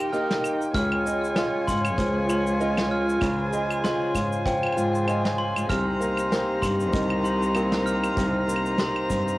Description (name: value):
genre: folktronica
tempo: 97 BPM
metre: 4/4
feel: swing 56% on 16ths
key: unclear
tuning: A4 = 439 Hz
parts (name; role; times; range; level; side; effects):
- dark string quartet; sustained chords; 0.0-9.4 s; Eb4 to Bb5; -29 LUFS; left 1 dB; cassette tape
- fingerpicked swing-style acoustic guitar; arpeggios; 0.0-9.4 s; C3 to G4; -27 LUFS; equal; cassette tape, tape echo
- glockenspiel with soft plastic mallets; second line; 0.1-9.0 s; G5 to F6; -30 LUFS; equal; cassette tape, tape echo
- cabasa, snare drum and claves; drums; 0.1-9.4 s; none; -30 LUFS; equal; cassette tape
- muted cello; bass; 0.7-9.2 s; C2 to Ab2; -28 LUFS; equal; none
- kick drum; drums; 0.7-9.2 s; none; -32 LUFS; equal; cassette tape
room: light reverb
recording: home recording on cassette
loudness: -22 LUFS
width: side -18 dB against mid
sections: 0.0-9.4 A section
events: none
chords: 0.0 Eb; 0.7 Db; 5.7 Cm7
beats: 0.13 | 0.75 1.37 1.98 2.60 | 3.22 3.84 4.46 5.08 | 5.70 6.31 6.93 7.55 | 8.17 8.79